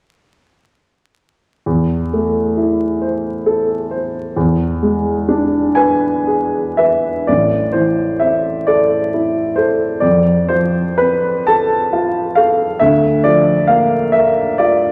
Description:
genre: classical, romantic nocturne for solo piano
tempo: 37-46 BPM (dotted quarters)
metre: 12/8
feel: rubato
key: A minor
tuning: A4 = 440 Hz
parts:
  - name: warm baby grand piano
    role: solo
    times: 1.7-14.9 s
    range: A1 to A5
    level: -15 LUFS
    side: equal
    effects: none
room: wet recital hall reverb, RT60 1.8 s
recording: vinyl crackle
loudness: -15 LUFS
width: mono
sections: 1.7-7.3 A section; 7.3-14.9 B section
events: none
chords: 1.7 Am/E; 4.3 E7; 7.3 Am; 10.0 F; 12.8 Bb/D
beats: | 1.65 3.01 4.35 5.75 | 7.28 8.67 10.02 11.48 | 12.81 14.14

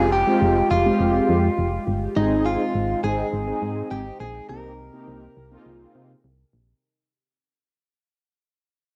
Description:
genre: synth-pop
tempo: 103 BPM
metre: 4/4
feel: straight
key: unclear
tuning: A4 = 439 Hz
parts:
  - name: direct-recorded clean electric guitar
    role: melody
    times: 0.0-6.2 s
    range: Eb4 to Bb4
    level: -27 LUFS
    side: equal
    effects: tape echo
  - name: mellow synth brass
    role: accompaniment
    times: 0.0-6.1 s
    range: Ab3 to Ab4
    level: -26 LUFS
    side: equal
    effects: chorus, phaser
  - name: chorused pulse-width pad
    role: sustained chords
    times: 0.0-6.8 s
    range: C3 to Bb4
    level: -32 LUFS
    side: equal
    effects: none
  - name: solid FM bass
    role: bass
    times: 0.0-6.7 s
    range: F1 to C3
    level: -28 LUFS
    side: equal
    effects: none
  - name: downlifter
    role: sound effects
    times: 0.0-2.2 s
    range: none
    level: -41 LUFS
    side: equal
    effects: none
room: wet studio reverb, RT60 0.5 s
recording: home recording on cassette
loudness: -21 LUFS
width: mono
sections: 0.0-6.8 A section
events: fade-out 0.0-6.8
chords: 0.0 Fmadd9; 2.2 Ab; 4.5 Cm7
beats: 0.42 1.00 1.58 | 2.16 2.75 3.33 3.91 | 4.49 5.08 5.66 6.24

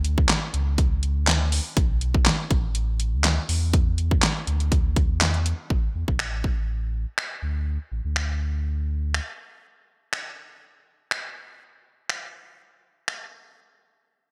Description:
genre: dance-pop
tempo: 122 BPM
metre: 4/4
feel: straight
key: unclear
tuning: A4 = 442 Hz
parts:
  - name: sub bass with octave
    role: bass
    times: 0.0-9.2 s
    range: A1 to E2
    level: -27 LUFS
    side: equal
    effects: sidechain pumping
  - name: pop drum kit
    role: drums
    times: 0.0-13.2 s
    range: finger snaps, handclaps, hi-hat, kick drum, snare drum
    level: -25 LUFS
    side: equal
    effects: gated reverb
room: light reverb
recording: bright 1980s-style digital production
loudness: -25 LUFS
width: mono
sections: 0.0-5.7 A section; 5.7-13.6 B section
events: none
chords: none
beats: 0.29 0.78 1.28 | 1.77 2.26 2.75 3.24 | 3.73 4.23 4.72 5.21 | 5.70 6.19 6.69 7.18 | 7.67 8.16 8.65 9.14 | 9.64 10.13 10.62 11.11 | 11.60 12.10 12.59 13.08

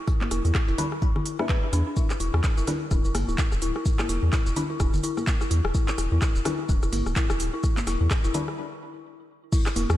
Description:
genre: minimal techno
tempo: 127 BPM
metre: 4/4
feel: swing 58% on 16ths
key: E minor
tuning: A4 = 439 Hz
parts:
  - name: dark detuned synth bell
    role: riff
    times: 0.1-9.9 s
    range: D4 to E5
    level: -31 LUFS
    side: left 2 dB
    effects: chorus, sidechain pumping, ping-pong delay
  - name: dusty soul sampler-style drum kit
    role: drums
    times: 0.1-9.9 s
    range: hi-hat, snare drum, tambourine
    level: -44 LUFS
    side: left 3 dB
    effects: none
  - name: electronic kick drum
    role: drums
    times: 0.1-9.6 s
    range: none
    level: -24 LUFS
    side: equal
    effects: none
  - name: electronic rim click and congas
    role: percussion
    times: 0.1-10.0 s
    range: none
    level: -33 LUFS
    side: left 2 dB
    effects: ping-pong delay
  - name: minimal click drum kit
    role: drums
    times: 0.2-10.0 s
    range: crash cymbal, handclaps, hi-hat, shaker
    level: -33 LUFS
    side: right 1 dB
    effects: none
  - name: round analog bass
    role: bass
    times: 0.3-10.0 s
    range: D1 to E2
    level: -25 LUFS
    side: equal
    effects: sidechain pumping
  - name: filtered dub chord stab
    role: stabs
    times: 0.8-8.4 s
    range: G3 to B4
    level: -35 LUFS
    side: left 3 dB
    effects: analog chorus, ping-pong delay
room: light reverb, digital ambience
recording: lossy compression artefacts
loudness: -22 LUFS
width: side -14 dB against mid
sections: 0.0-9.5 A section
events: break 8.6-9.5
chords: none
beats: | 0.08 0.55 1.02 1.49 | 1.97 2.44 2.91 3.38 | 3.86 4.33 4.80 5.27 | 5.75 6.22 6.69 7.16 | 7.63 8.11 8.58 9.05 | 9.53

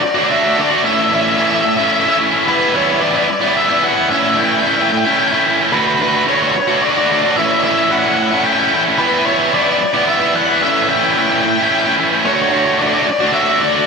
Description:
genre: rock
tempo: 110 BPM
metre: 3/4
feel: straight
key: unclear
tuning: A4 = 442 Hz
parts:
  - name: octave-fuzz lead guitar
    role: melody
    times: 0.0-13.9 s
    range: B4 to G5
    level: -16 LUFS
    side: left 1 dB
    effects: distortion, ping-pong delay
  - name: tight distorted guitar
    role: riff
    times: 0.0-13.9 s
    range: A2 to F#4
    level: -14 LUFS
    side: right 1 dB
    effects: distortion
room: wet huge ambient reverb, RT60 8.5 s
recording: dreamy mix soaked in reverb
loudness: -12 LUFS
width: side -4 dB against mid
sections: 0.0-13.9 A section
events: none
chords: 0.0 D; 0.8 A; 2.5 Em7; 4.1 A7; 5.7 Dmaj7; 7.4 A; 9.0 Em7; 10.6 A7; 12.3 Dmaj7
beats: 0.29 | 0.83 1.38 1.92 | 2.47 3.01 3.56 | 4.10 4.64 5.19 | 5.73 6.27 6.82 | 7.36 7.91 8.45 | 8.99 9.54 10.08 | 10.62 11.17 11.71 | 12.25 12.80 13.34

